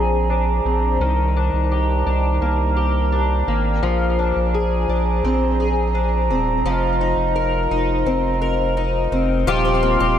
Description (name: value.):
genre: dream pop.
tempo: 85 BPM.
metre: 4/4.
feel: straight.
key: Bb mixolydian.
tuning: A4 = 440 Hz.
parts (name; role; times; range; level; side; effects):
mellow brass ensemble; sustained chords; 0.0-10.2 s; Eb3 to C6; -23 LUFS; right 4 dB; low-pass filter.
fingerpicked twelve-string acoustic guitar; arpeggios; 0.0-10.2 s; Eb3 to Bb4; -21 LUFS; left 4 dB; analog chorus, low-pass filter, ping-pong delay.
saturated sub bass; bass; 0.0-10.2 s; Eb1 to C2; -21 LUFS; equal; none.
room: moderate huge ambient reverb, RT60 3.8 s.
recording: none.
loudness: -17 LUFS.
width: side -10 dB against mid.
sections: 0.0-9.5 A section.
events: none.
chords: 0.0 Bb9; 1.0 Cm9; 3.8 Bb9; 6.7 F7sus4; 9.5 Eb69.